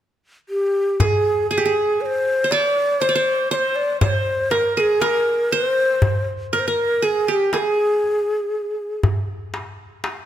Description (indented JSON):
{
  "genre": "Arabic maqam ensemble",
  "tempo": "119 BPM (eighths)",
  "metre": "10/8",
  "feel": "straight",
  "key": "unclear",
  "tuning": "A4 = 444 Hz",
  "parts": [
    { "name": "breathy mellow ney", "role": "melody", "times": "0.5-9.0 s", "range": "G4 to D5-38c", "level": "-19 LUFS", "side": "left 1 dB", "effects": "none" },
    { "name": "qanun", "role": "second line", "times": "1.0-9.0 s", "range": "G4 to D5-50c", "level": "-22 LUFS", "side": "right 3 dB", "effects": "none" },
    { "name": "darbuka", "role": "percussion", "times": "1.0-10.3 s", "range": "none", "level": "-22 LUFS", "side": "left 1 dB", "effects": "none" }
  ],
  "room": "light reverb",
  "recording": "close, detailed microphones",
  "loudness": "-17 LUFS",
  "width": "side -11 dB against mid",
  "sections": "1.0-10.3 A section",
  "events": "none",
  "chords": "none"
}